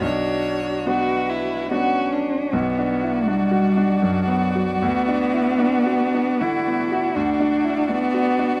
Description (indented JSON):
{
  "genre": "classical, slow romantic movement for piano quartet",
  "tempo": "70-83 BPM",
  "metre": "3/4",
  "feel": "rubato",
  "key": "B minor",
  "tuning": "A4 = 445 Hz",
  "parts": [
    { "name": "warm violin", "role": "melody", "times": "0.0-8.6 s", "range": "B4 to D5", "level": "-36 LUFS", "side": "equal", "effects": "none" },
    { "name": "dark cello", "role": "second line", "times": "0.0-8.6 s", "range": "F#3 to F#4", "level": "-24 LUFS", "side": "equal", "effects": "none" },
    { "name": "warm violin", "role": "second line", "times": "0.0-8.6 s", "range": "D4 to F#4", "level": "-28 LUFS", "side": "equal", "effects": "none" },
    { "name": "bright grand piano", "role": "accompaniment", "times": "0.0-8.6 s", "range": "B1 to F#4", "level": "-26 LUFS", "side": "equal", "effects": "none" }
  ],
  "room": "moderate studio reverb, RT60 0.9 s",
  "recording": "none",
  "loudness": "-21 LUFS",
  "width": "mono",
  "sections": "0.0-2.5 A section; 2.5-8.6 B section",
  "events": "none",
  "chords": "0.0 Bm; 4.8 Bm/D; 7.2 D"
}